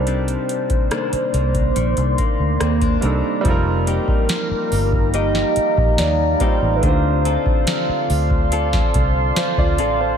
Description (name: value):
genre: contemporary R&B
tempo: 71 BPM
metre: 4/4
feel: straight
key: unclear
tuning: A4 = 436 Hz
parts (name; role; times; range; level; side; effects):
- hollow clarinet-like synth lead; melody; 0.0-8.5 s; Bb4 to Eb5; -24 LUFS; equal; chorus, tape echo
- bright concert grand piano; accompaniment; 0.0-10.2 s; G3 to D5; -26 LUFS; right 6 dB; none
- deep dark ambient pad; sustained chords; 0.0-10.2 s; Bb3 to C6; -23 LUFS; right 1 dB; chorus, built-in reverb
- direct-recorded clean electric guitar; arpeggios; 0.0-10.2 s; C3 to A4; -26 LUFS; left 6 dB; wide subtle chorus, tape echo
- vintage muted fingered electric bass; bass; 0.0-10.2 s; F1 to Eb2; -20 LUFS; equal; none
- booming analog drum machine; drums; 0.1-10.0 s; hi-hat, kick drum, rim click, snare drum; -21 LUFS; equal; none
room: moderate plate reverb, RT60 2.4 s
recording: dreamy mix soaked in reverb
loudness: -16 LUFS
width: side -8 dB against mid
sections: 0.0-3.4 A section; 3.4-10.2 B section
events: none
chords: 0.0 Cm9; 3.4 F9sus4; 6.8 Dm7